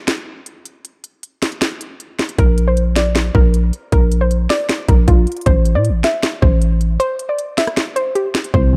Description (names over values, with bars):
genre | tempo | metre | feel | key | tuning
hip hop, trap | 156 BPM | 4/4 | half-time | unclear | A4 = 440 Hz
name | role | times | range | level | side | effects
trap drum kit | drums | 0.1-8.6 s | finger snaps, hi-hat, kick drum, rim click, snare drum | -19 LUFS | equal | none
soft round pluck | melody | 2.4-8.8 s | F4 to E5 | -22 LUFS | equal | chorus
growling 808-style bass | bass | 2.4-8.8 s | A1 to A2 | -17 LUFS | equal | none
dark concert grand piano | accompaniment | 8.5-8.8 s | C3 to E3 | -20 LUFS | equal | none
room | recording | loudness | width
little or no reverb | dark, warm production | -16 LUFS | mono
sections
0.0-8.8 A section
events
break 0.0-2.4, 7.0-8.5; hi-hats muted 8.5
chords
0.0 N.C.; 2.4 Bb; 5.5 Am7